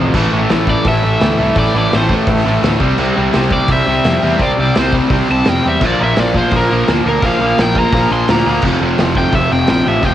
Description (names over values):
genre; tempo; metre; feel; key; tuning
punk rock; 170 BPM; 4/4; straight; unclear; A4 = 439 Hz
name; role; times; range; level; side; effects
biting overdriven guitar; riff; 0.0-10.1 s; F2 to C4; -21 LUFS; right 1 dB; cassette tape
cranked stack guitar; riff; 0.0-10.1 s; F2 to C4; -19 LUFS; right 7 dB; overdrive, cassette tape
distorted electric guitar; riff; 0.0-10.1 s; F2 to C4; -18 LUFS; left 6 dB; distortion, cassette tape
fuzz picked electric bass; bass; 0.0-10.1 s; F1 to F2; -18 LUFS; equal; overdrive
loose indie drum kit; drums; 0.1-10.1 s; crash cymbal, hi-hat, kick drum, snare drum; -19 LUFS; equal; cassette tape
cranked stack guitar; melody; 0.7-10.1 s; Bb4 to C6; -18 LUFS; left 1 dB; overdrive, cassette tape
room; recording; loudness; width
little or no reverb; home recording on cassette; -11 LUFS; side -12 dB against mid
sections
0.1-10.1 A section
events
overdriven electric guitar solo 0.1-10.1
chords
0.1 A5; 2.8 C; 5.8 Bb; 8.6 F5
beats
| 0.14 0.50 0.85 1.21 | 1.56 1.92 2.27 2.63 | 2.98 3.34 3.69 4.05 | 4.40 4.76 5.11 5.46 | 5.82 6.17 6.52 6.88 | 7.23 7.58 7.93 8.28 | 8.63 8.98 9.34 9.69 | 10.04